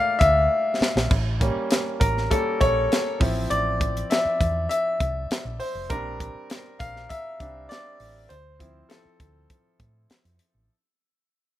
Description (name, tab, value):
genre	lush 1970s-style soul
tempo	100 BPM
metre	4/4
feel	straight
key	D minor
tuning	A4 = 438 Hz
part	clear grand piano	accompaniment	0.0-10.7 s	F3 to F5	-24 LUFS	left 1 dB	none
part	hollow-body short-scale fingered electric bass	bass	0.2-10.7 s	F1 to A2	-28 LUFS	equal	none
part	tight funk drum kit	drums	0.2-10.5 s	crash cymbal, hi-hat, kick drum, snare drum	-24 LUFS	equal	none
room	light reverb, small room ambience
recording	rough home demo mix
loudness	-21 LUFS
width	side -13 dB against mid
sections	0.0-10.7 A section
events	fade-out 0.0-10.7; grand piano solo 0.0-10.7; drum fill 0.5-1.1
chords	0.0 Gm7 (rootless); 1.1 A7b9; 3.2 Dm9/A; 5.9 Bb69; 8.3 Dm9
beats	0.51 | 1.11 1.71 2.31 2.90 | 3.50 4.10 4.70 5.30 | 5.90 6.50 7.10 7.70 | 8.30 8.90 9.50 10.10